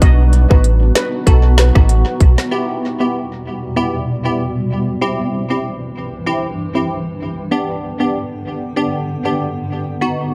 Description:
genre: dancehall.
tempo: 96 BPM.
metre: 4/4.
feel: swing 56% on 16ths.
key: E minor.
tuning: A4 = 441 Hz.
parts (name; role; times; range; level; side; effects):
steel pan; melody; 0.0-1.7 s; A4 to D#5; -26 LUFS; equal; tape echo.
wavetable chord stab; accompaniment; 0.0-10.3 s; B3 to G4; -23 LUFS; equal; sidechain pumping, tape echo.
granular cloud pad; sustained chords; 0.0-10.3 s; C2 to F#4; -25 LUFS; equal; built-in reverb, sidechain pumping.
sub bass with octave; bass; 0.0-2.4 s; A1 to B1; -13 LUFS; equal; none.
island pop drum kit; drums; 0.0-2.5 s; hi-hat, kick drum, rim click, snare drum; -14 LUFS; equal; none.
room: light reverb.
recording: echo-heavy mix.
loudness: -16 LUFS.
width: mono.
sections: 0.0-2.5 A section; 2.5-10.3 B section.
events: none.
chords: 0.0 B; 2.5 Em; 5.0 C; 7.5 G.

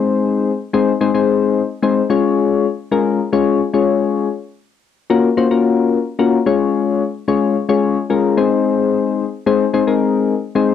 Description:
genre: pop.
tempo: 110 BPM.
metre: 4/4.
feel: straight.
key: Db major.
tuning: A4 = 441 Hz.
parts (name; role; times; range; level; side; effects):
soft electric-piano-like synth keys; solo; 0.0-10.7 s; Ab3 to Db5; -14 LUFS; left 5 dB; chorus, cassette tape.
room: moderate small room reverb, RT60 0.5 s.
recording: home recording on cassette.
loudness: -14 LUFS.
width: side -9 dB against mid.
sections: 0.0-10.7 A section.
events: none.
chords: 0.0 Ab; 2.1 Db/Ab; 4.3 Gbmaj7; 6.5 Db; 8.4 Ab.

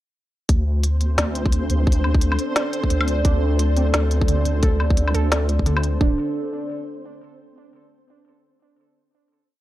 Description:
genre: half-time drum and bass.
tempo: 174 BPM.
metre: 4/4.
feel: swing 60% on 16ths, half-time.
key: unclear.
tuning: A4 = 439 Hz.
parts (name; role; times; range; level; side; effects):
dark analog pad; sustained chords; 1.3-7.3 s; D4 to D5; -28 LUFS; equal; chorus, phaser, sidechain pumping.
deep soft wobble bass; bass; 0.5-6.2 s; D1 to D2; -20 LUFS; equal; chorus.
electronic kick drum; drums; 0.5-6.1 s; none; -19 LUFS; equal; none.
organic electronic drum kit; drums; 0.5-5.9 s; hi-hat, snare drum, woodblock; -24 LUFS; left 1 dB; none.
flickering grainy texture; texture; 0.8-6.0 s; C4 to C5; -31 LUFS; left 1 dB; built-in reverb.
warbly dusty pluck; arpeggios; 3.2-6.2 s; D3 to A4; -29 LUFS; right 3 dB; chorus, phaser, tape echo.
room: digital ambience.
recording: dry, gritty hardware recording.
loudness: -18 LUFS.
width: side -15 dB against mid.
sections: 0.5-6.0 drop; 6.0-7.4 final chord.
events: drop 0.5-6.0.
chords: 0.5 D5.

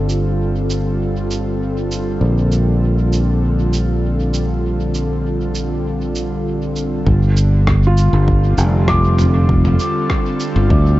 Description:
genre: ambient dub.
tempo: 99 BPM.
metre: 4/4.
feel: swing 53% on 16ths.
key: G minor.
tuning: A4 = 441 Hz.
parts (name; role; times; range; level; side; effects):
airy breathy pad; sustained chords; 0.0-11.0 s; D3 to A4; -20 LUFS; equal; chorus.
fingered electric bass; bass; 0.0-11.0 s; F1 to D2; -15 LUFS; equal; none.
lo-fi sampler-style drum kit; drums; 0.1-10.5 s; rim click, shaker, toms; -25 LUFS; right 1 dB; overdrive, dub echo.
electronic kick drum; drums; 7.1-10.8 s; none; -19 LUFS; equal; overdrive.
felt-muted upright piano; arpeggios; 7.9-11.0 s; F4 to D6; -23 LUFS; equal; dub echo.
room: little or no reverb.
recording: dark, warm production, nothing above 7.7 kHz.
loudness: -14 LUFS.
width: side -16 dB against mid.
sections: 0.0-7.1 A section; 7.1-11.0 B section.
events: none.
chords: 0.0 G5; 2.2 Bb; 7.1 G7(no3).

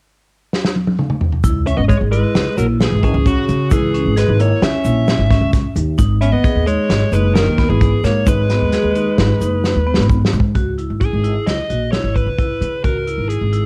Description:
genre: progressive instrumental, band music in an uneven meter.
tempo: 132 BPM.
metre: 5/4.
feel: straight.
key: C# dorian.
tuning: A4 = 440 Hz.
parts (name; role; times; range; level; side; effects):
unplugged drum kit; drums; 0.5-13.6 s; hi-hat, kick drum, snare drum, toms; -20 LUFS; equal; cassette tape.
vibraphone with hard mallets; arpeggios; 1.4-13.7 s; B3 to G#4; -27 LUFS; equal; cassette tape.
upright bass; bass; 1.4-13.6 s; F#1 to C#3; -20 LUFS; equal; none.
tube shaker; percussion; 1.4-10.4 s; none; -42 LUFS; equal; none.
dark smooth lead guitar; melody; 1.7-13.7 s; F#4 to E5; -24 LUFS; equal; overdrive, cassette tape, tape echo.
mellow alto saxophone; second line; 1.7-10.1 s; C#3 to C#4; -24 LUFS; equal; cassette tape.
room: small room ambience.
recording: home recording on cassette.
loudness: -16 LUFS.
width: mono.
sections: 0.0-1.4 A section; 1.4-10.6 B section; 10.6-13.7 C section.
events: drum fill 0.5-1.4, 9.6-10.6.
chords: 0.0 N.C.; 1.4 C#m; 6.0 G#m; 10.6 C#m.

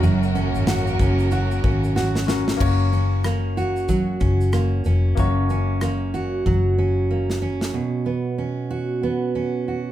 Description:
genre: acoustic pop.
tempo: 93 BPM.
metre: 4/4.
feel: swing 60% on 16ths.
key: F# major.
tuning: A4 = 441 Hz.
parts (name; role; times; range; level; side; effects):
clear baby grand piano; accompaniment; 0.0-7.8 s; A#3 to C#5; -29 LUFS; left 6 dB; none.
fingerpicked steel-string acoustic guitar; accompaniment; 0.0-9.9 s; F#2 to F#4; -23 LUFS; right 3 dB; none.
warm studio string section; sustained chords; 0.0-2.6 s; C#3 to A#4; -29 LUFS; left 2 dB; none.
vintage muted fingered electric bass; bass; 0.0-7.7 s; E#1 to G#1; -21 LUFS; left 1 dB; none.
modern studio drum kit; drums; 0.0-7.7 s; crash cymbal, kick drum, rim click, shaker, snare drum; -26 LUFS; left 1 dB; none.
room: moderate studio reverb, RT60 0.7 s.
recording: heard from further back in the room.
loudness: -19 LUFS.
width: side -12 dB against mid.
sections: 0.0-2.6 A section; 2.6-7.7 B section; 7.7-9.9 C section.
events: drum fill 2.0-2.6, 6.5-7.7.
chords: 0.0 F#; 7.7 Bsus2.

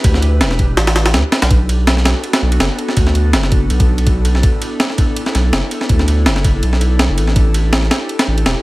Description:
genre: drum and bass, jungle.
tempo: 164 BPM.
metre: 4/4.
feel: swing 54% on 16ths.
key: B minor.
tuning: A4 = 439 Hz.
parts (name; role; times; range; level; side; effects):
airy breathy pad; sustained chords; 0.0-8.6 s; B3 to B4; -23 LUFS; equal; chorus.
saturated sub bass; bass; 0.0-8.5 s; E1 to D2; -14 LUFS; equal; none.
breakbeat sampler-style drum kit; drums; 0.0-8.6 s; kick drum, ride cymbal, snare drum; -15 LUFS; equal; studio reverb.
room: little or no reverb.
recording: vinyl crackle.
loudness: -12 LUFS.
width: side -20 dB against mid.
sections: 0.0-8.6 A section.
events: none.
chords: 0.0 A7sus4; 1.5 Bm7; 7.4 A7sus4.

